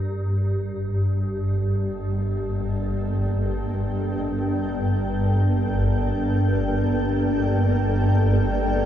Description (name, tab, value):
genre	ambient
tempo	free time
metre	none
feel	none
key	G minor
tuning	A4 = 438 Hz
part	granular cloud pad	sustained chords	1.7-8.9 s	Bb3 to G5	-30 LUFS	left 1 dB	built-in reverb, shimmer reverb
part	swarming drone	drone	0.0-8.9 s	G1 to G2	-21 LUFS	equal	built-in reverb
room	wet cathedral reverb, RT60 4.8 s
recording	cassette tape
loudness	-21 LUFS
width	side -10 dB against mid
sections	0.0-8.9 A section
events	fade-in on ambient pad 0.0-8.9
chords	0.0 Gmadd9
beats	free time